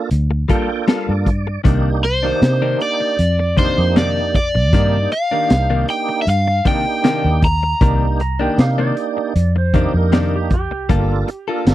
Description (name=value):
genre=straight-eighth soul blues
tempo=78 BPM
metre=4/4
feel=straight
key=unclear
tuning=A4 = 440 Hz
part: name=tonewheel organ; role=accompaniment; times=0.0-11.7 s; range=Bb3 to G5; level=-22 LUFS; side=right 6 dB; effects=slow rotary speaker, overdrive, chorus vibrato
part: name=vintage muted fingered electric bass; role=bass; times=0.1-11.7 s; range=G1 to C3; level=-17 LUFS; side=equal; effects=none
part: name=crunchy breakbeat drum kit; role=drums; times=0.1-11.7 s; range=hi-hat, kick drum, snare drum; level=-16 LUFS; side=equal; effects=none
part: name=direct-recorded clean electric guitar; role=stabs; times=0.3-11.7 s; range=C3 to A4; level=-22 LUFS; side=left 7 dB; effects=none
part: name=overdriven semi-hollow guitar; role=melody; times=2.0-8.2 s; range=C5 to Bb5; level=-19 LUFS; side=equal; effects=none
part: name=clean lap steel guitar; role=second line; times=8.2-11.7 s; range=G4 to Bb5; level=-25 LUFS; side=right 4 dB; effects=none
room=little or no reverb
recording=dry, close 1970s-style studio recording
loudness=-14 LUFS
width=side -14 dB against mid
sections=0.0-11.7 A section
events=tonewheel organ fill 0.1-1.6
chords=0.0 Gm9; 1.6 Cm9; 10.9 Gm9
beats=0.11 0.88 | 1.65 2.42 3.19 3.96 | 4.73 5.50 6.27 7.04 | 7.81 8.58 9.35 10.12 | 10.89 11.66